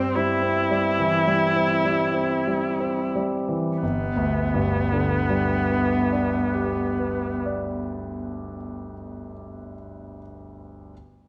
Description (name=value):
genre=classical, romantic duo for viola and grand piano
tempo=43-57 BPM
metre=4/4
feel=rubato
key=G major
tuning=A4 = 440 Hz
part: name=clear viola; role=melody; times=0.0-7.4 s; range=B3 to E4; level=-27 LUFS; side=equal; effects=none
part: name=clear concert grand piano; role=accompaniment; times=0.0-10.9 s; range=G1 to D5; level=-27 LUFS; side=equal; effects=none
room=wet scoring stage reverb, RT60 1.9 s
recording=nothing above 11.0 kHz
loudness=-23 LUFS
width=mono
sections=0.0-3.8 A section; 3.8-8.7 B section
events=slowing down 0.0-3.8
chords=0.0 C/G; 3.8 G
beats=0.15 1.26 2.48 | 3.81 5.04 6.26 7.50